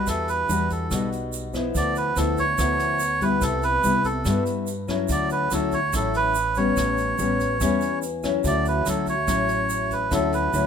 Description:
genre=bossa nova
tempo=143 BPM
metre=4/4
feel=straight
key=D major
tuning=A4 = 441 Hz
part: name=melodica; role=melody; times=0.0-10.7 s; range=A4 to D5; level=-24 LUFS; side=right 3 dB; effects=none
part: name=nylon-string guitar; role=accompaniment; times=0.0-10.7 s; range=G2 to F#4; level=-25 LUFS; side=left 5 dB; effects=none
part: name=upright bass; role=bass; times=0.0-10.7 s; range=A1 to G2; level=-29 LUFS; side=right 2 dB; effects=none
part: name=vintage brush drum kit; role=drums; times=0.1-10.6 s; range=hi-hat, kick drum, rim click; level=-33 LUFS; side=right 1 dB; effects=none
part: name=egg shaker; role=percussion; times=0.1-10.7 s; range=none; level=-35 LUFS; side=right 8 dB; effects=none
part: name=vibraphone with medium mallets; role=accompaniment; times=8.4-10.7 s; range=F#4 to E5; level=-31 LUFS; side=right 5 dB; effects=none
room=little or no reverb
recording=minimal, uncompressed stereo recording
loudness=-21 LUFS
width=side -7 dB against mid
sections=0.0-10.7 A section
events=none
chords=0.0 Em9; 1.7 G6/D; 3.4 Cmaj7; 5.1 Dmaj9; 6.8 A9; 8.4 Dmaj9

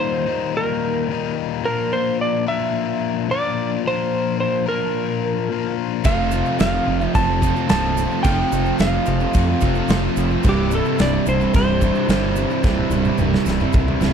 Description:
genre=classic rock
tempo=109 BPM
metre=4/4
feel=straight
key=unclear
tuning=A4 = 441 Hz
part: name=clean lap steel guitar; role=melody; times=0.0-14.1 s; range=G4 to A5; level=-23 LUFS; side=right 2 dB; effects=slapback echo
part: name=cranked stack guitar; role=riff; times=0.0-14.1 s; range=C2 to Bb4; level=-23 LUFS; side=left 11 dB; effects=overdrive
part: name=biting overdriven guitar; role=riff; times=6.0-14.1 s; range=C2 to F3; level=-26 LUFS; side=right 2 dB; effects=spring reverb
part: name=overdriven electric guitar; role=riff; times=6.0-14.1 s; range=C2 to F4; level=-24 LUFS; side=right 16 dB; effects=none
part: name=huge arena drum kit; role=drums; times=6.0-14.1 s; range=crash cymbal, kick drum, snare drum, toms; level=-22 LUFS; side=right 1 dB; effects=none
part: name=tube shaker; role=percussion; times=6.0-14.1 s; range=none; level=-42 LUFS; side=right 20 dB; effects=none
part: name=growling fingered electric bass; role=bass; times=6.1-14.1 s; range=C1 to F2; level=-22 LUFS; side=right 1 dB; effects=overdrive
room=studio reverb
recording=dry, close 1970s-style studio recording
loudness=-17 LUFS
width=side -7 dB against mid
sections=0.0-14.1 A section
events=drum fill 12.6-14.1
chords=0.0 Eb; 1.6 Bb; 6.1 F; 10.4 C

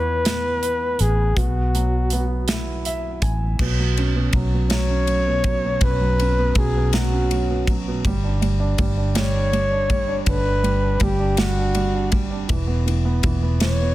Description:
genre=six-eight pop ballad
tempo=54 BPM (dotted quarters)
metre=6/8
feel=straight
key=unclear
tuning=A4 = 439 Hz
part: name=breathy flugelhorn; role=melody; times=0.0-13.9 s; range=F#4 to C#5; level=-24 LUFS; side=left 1 dB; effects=none
part: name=warm baby grand piano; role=accompaniment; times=0.0-13.9 s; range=F#2 to G#5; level=-25 LUFS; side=right 3 dB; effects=none
part: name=vintage muted fingered electric bass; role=bass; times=0.0-13.9 s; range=E1 to E2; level=-22 LUFS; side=equal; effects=none
part: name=modern studio drum kit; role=drums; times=0.3-13.8 s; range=crash cymbal, hi-hat, kick drum, ride cymbal, snare drum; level=-24 LUFS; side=equal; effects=none
room=little or no reverb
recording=dense, heavily limited modern master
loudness=-18 LUFS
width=side -16 dB against mid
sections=0.0-3.6 A section; 3.6-13.9 B section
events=grand piano fill 2.5-3.6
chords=0.0 E5; 1.4 Bsus4; 3.6 Bsus2; 8.0 G5; 12.5 E5

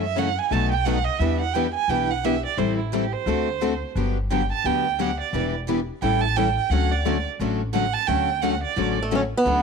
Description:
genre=acoustic string swing (jazz manouche)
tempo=175 BPM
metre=4/4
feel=swing 61% on 8ths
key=D major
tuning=A4 = 438 Hz
part: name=warm violin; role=second line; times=0.0-9.6 s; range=D4 to A5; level=-25 LUFS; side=right 12 dB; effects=none
part: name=picked steel-string acoustic guitar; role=accompaniment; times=0.0-9.6 s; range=B2 to A4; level=-26 LUFS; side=left 14 dB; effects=none
part: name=picked steel-string acoustic guitar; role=accompaniment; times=0.0-9.6 s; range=B2 to B4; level=-30 LUFS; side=right 12 dB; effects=none
part: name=upright bass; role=bass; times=0.0-9.6 s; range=E1 to F#2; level=-27 LUFS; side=left 1 dB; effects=none
part: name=picked swing-style acoustic guitar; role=melody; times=9.0-9.6 s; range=A3 to C#4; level=-20 LUFS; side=right 1 dB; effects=none
room=light reverb, studio reverb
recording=1960s-style stereo with parts hard left and right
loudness=-21 LUFS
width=side -5 dB against mid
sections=0.0-9.5 A section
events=violin solo 0.0-9.5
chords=0.0 F#m7; 0.5 B7; 1.2 Em7; 2.6 Am7; 3.3 D7; 4.0 Gmaj7; 5.3 Em7; 6.0 A7; 6.7 Dmaj7

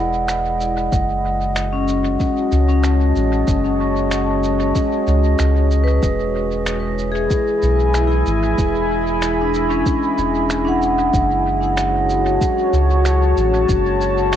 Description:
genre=ambient dub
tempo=94 BPM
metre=4/4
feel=straight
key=F# minor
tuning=A4 = 440 Hz
part: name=deep dark ambient pad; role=sustained chords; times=0.0-14.4 s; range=E4 to B5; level=-22 LUFS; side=left 1 dB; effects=chorus, built-in reverb
part: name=vibraphone with medium hard mallets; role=arpeggios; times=0.0-14.4 s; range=C#4 to C#6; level=-20 LUFS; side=left 3 dB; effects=tape echo
part: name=soft dub sub bass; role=bass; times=0.0-14.4 s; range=E1 to C#2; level=-20 LUFS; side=equal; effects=none
part: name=drifting glass-harmonics texture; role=texture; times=0.0-14.4 s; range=G#3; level=-25 LUFS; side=right 9 dB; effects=chorus, built-in reverb
part: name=electronic finger snaps and cabasa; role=drums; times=0.3-14.4 s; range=none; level=-29 LUFS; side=right 1 dB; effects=cassette tape, dub echo
part: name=electronic kick drum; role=drums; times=0.9-13.8 s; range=none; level=-21 LUFS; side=equal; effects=cassette tape
room=light reverb, digital ambience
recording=home recording on cassette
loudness=-15 LUFS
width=side -10 dB against mid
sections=0.0-14.4 A section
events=fade-in on ambient pad 0.0-14.4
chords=0.0 E; 0.9 F#m7; 6.0 E; 11.1 F#m7

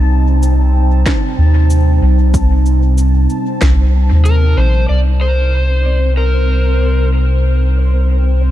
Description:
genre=ambient dub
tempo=94 BPM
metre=4/4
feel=swing 57% on 16ths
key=C dorian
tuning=A4 = 439 Hz
part: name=warbly tape-like pad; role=sustained chords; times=0.0-8.5 s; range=C3 to Eb4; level=-22 LUFS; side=equal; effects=chorus, built-in reverb
part: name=soft dub sub bass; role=bass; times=0.0-8.5 s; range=Bb1 to Eb2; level=-11 LUFS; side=equal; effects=none
part: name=bubbling stepped-filter texture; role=texture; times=0.0-8.5 s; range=C4 to A5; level=-23 LUFS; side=right 1 dB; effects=chorus, built-in reverb
part: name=electronic shaker and snare drum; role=drums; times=0.4-4.4 s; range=none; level=-24 LUFS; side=equal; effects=low-pass filter on perc, low-pass filter on snare, low-pass filter on room, dub echo
part: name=electronic kick drum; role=drums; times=1.1-3.8 s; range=none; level=-16 LUFS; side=equal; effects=overdrive
part: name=overdriven slide guitar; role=melody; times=4.3-7.1 s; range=Bb4 to D5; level=-20 LUFS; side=left 1 dB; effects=dub echo
room=digital ambience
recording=none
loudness=-10 LUFS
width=side -13 dB against mid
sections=0.0-4.9 A section; 4.9-8.5 B section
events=none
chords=0.0 Cm; 4.9 Cm7

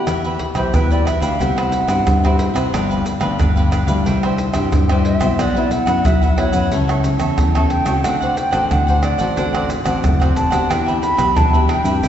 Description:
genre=samba and choro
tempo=90 BPM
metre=4/4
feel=straight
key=unclear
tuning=A4 = 437 Hz
part: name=cavaquinho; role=accompaniment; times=0.0-12.1 s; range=D4 to F#5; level=-24 LUFS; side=right 2 dB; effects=none
part: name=nylon-string guitar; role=accompaniment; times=0.0-12.1 s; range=G2 to A4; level=-22 LUFS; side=left 4 dB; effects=none
part: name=fingered electric bass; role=bass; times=0.1-12.1 s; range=E1 to C3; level=-21 LUFS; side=left 1 dB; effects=none
part: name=egg shaker, surdo, pandeiro and tamborim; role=percussion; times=0.1-12.1 s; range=none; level=-19 LUFS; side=right 1 dB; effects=none
part: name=wooden flute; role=melody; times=0.6-12.1 s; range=B4 to B5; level=-21 LUFS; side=right 2 dB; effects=none
room=wet concert hall reverb, RT60 2.4 s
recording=recorded in a church or concert hall, nothing above 7.9 kHz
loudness=-14 LUFS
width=side -10 dB against mid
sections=0.1-12.1 A section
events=flute solo 0.1-12.1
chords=0.1 Em; 1.4 Cmaj7; 2.7 G7; 4.1 Cadd9; 5.4 Bsus4; 6.7 A/C#; 8.0 D7; 10.7 Em7

